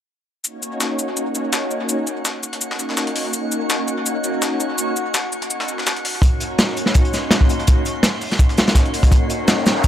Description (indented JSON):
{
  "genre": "drum and bass, jungle",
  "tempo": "166 BPM",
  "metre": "4/4",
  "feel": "swing 54% on 16ths",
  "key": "Eb dorian",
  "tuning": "A4 = 436 Hz",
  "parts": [
    { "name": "breakbeat sampler-style drum kit", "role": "drums", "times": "0.4-9.9 s", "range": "hi-hat, shaker, snare drum", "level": "-24 LUFS", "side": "left 2 dB", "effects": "overdrive, high-pass filter on perc, high-pass filter on snare, high-pass filter on hats, high-pass filter on room, dub echo" },
    { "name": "drifting glass-harmonics texture", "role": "texture", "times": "1.2-9.9 s", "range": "Gb4 to C6", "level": "-30 LUFS", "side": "left 1 dB", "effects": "chorus, built-in reverb" },
    { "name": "crunchy breakbeat drum kit", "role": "drums", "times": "6.2-9.9 s", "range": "hi-hat, kick drum, snare drum", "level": "-14 LUFS", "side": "equal", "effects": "none" },
    { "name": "riser", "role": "sound effects", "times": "9.4-9.9 s", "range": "none", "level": "-25 LUFS", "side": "left 4 dB", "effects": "none" }
  ],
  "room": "light reverb, studio ambience",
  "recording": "echo-heavy mix",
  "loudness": "-17 LUFS",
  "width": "side -11 dB against mid",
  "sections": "0.4-9.9 A section",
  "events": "riser 9.4-9.9",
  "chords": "0.4 Ebm7"
}